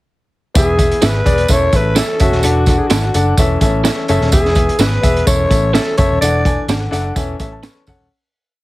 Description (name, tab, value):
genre	uptempo 1960s-style soul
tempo	127 BPM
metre	4/4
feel	straight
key	unclear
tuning	A4 = 440 Hz
part	clear upright piano	accompaniment	0.5-8.1 s	E3 to C#6	-18 LUFS	left 2 dB	none
part	breathy alto saxophone	melody	0.6-6.7 s	E4 to D5	-17 LUFS	equal	none
part	vintage muted picked electric bass	bass	0.6-8.1 s	D#1 to A1	-17 LUFS	equal	none
part	crunchy breakbeat drum kit	drums	0.6-8.0 s	hi-hat, kick drum, snare drum	-16 LUFS	equal	none
part	tambourine	percussion	0.6-8.0 s	none	-27 LUFS	right 6 dB	none
part	electric guitar through a small old amp	stabs	1.0-7.7 s	C#4 to E5	-22 LUFS	right 6 dB	tremolo
room	light reverb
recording	heavily compressed radio sound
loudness	-12 LUFS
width	side -18 dB against mid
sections	0.6-8.1 verse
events	fade-out 6.2-8.1; upright piano fill 6.7-8.1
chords	0.6 E; 1.5 A/E; 2.4 D/E; 3.4 A/E; 4.3 E; 5.3 A/E; 6.2 D/E; 7.2 A/E